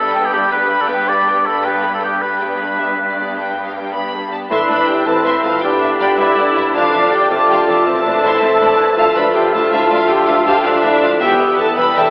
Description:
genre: cinematic, heroic adventure film score.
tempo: 107 BPM (dotted quarters).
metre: 12/8.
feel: straight.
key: A minor from 4.5 s.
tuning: A4 = 440 Hz.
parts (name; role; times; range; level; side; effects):
warm symphonic violin section; melody; 0.0-12.1 s; D5 to B5; -22 LUFS; left 1 dB; none.
clear oboe; second line; 0.0-12.1 s; G4 to E5; -18 LUFS; equal; none.
warm symphonic violin section; second line; 0.0-12.1 s; D4 to C6; -23 LUFS; equal; none.
rich studio viola section; accompaniment; 0.0-12.1 s; G3 to F4; -21 LUFS; equal; none.
rich symphonic cello section; bass; 0.0-12.0 s; D2 to A2; -25 LUFS; equal; none.
dark clarinet; second line; 4.5-12.1 s; D4 to B4; -19 LUFS; equal; none.
mellow hollow silver concert flute; second line; 4.5-12.1 s; G5 to B5; -22 LUFS; equal; none.
mellow French horn section; sustained chords; 4.5-12.1 s; B3 to C5; -21 LUFS; equal; none.
warm trombone section; sustained chords; 4.5-12.1 s; D3 to B3; -24 LUFS; equal; none.
concert harp; arpeggios; 4.5-12.1 s; F2 to D5; -30 LUFS; left 1 dB; none.
clear trumpet; stabs; 4.5-12.1 s; B4 to E5; -20 LUFS; equal; none.
rich symphonic double bass section; bass; 4.5-12.0 s; E1 to D2; -34 LUFS; equal; none.
timpani; percussion; 7.9-8.4 s; A2; -36 LUFS; equal; none.
room: wet scoring stage reverb, RT60 2.0 s.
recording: heard from further back in the room, telephone sound.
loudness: -12 LUFS.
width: side -28 dB against mid.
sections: 0.0-4.5 A section; 4.5-12.1 B section.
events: none.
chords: 0.0 G; 4.5 Amadd9; 5.6 G; 6.7 Dmadd9/F; 7.9 Amadd9; 9.0 Dmadd9; 11.2 Em.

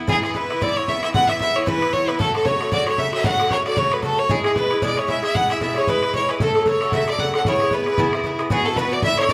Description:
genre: celtic folk, Celtic reel.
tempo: 228 BPM.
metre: 4/4.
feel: swing 58% on 8ths.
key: E mixolydian.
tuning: A4 = 439 Hz.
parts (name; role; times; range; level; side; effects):
Irish bouzouki; accompaniment; 0.0-9.3 s; G#2 to A4; -25 LUFS; equal; plate reverb.
clear fiddle; melody; 0.1-9.3 s; E4 to F#5; -24 LUFS; equal; plate reverb.
clear fiddle; second line; 0.1-9.3 s; E4 to F#5; -27 LUFS; equal; plate reverb.
bodhran; percussion; 0.1-9.3 s; none; -29 LUFS; equal; none.
room: wet studio ambience, RT60 0.5 s.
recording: rough home demo mix.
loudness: -20 LUFS.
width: mono.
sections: 0.1-8.5 A section.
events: none.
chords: 0.1 E; 2.2 F#m; 4.3 E; 6.4 F#m; 7.5 E6; 8.5 Esus2.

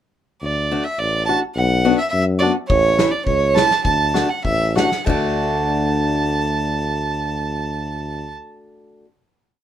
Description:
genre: alpine folk, alpine dance band.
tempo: 94-107 BPM.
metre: 2/4.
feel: straight.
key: D major.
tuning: A4 = 440 Hz.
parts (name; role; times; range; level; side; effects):
clear fiddle; melody; 0.4-8.4 s; C#5 to A5; -20 LUFS; right 3 dB; none.
warm tuba; bass; 0.4-8.4 s; A1 to F#2; -22 LUFS; left 1 dB; none.
picked acoustic archtop guitar; accompaniment; 0.7-9.1 s; A3 to F#4; -22 LUFS; left 3 dB; none.
loose indie drum kit; drums; 2.7-5.2 s; crash cymbal, kick drum, snare drum; -24 LUFS; left 1 dB; none.
room: light reverb.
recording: minimal, uncompressed stereo recording.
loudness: -16 LUFS.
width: side -10 dB against mid.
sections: 0.4-5.1 A section; 5.1-7.6 final chord.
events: slowing down 2.7-5.1.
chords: 0.4 D; 1.6 Bm; 2.7 A; 3.8 D.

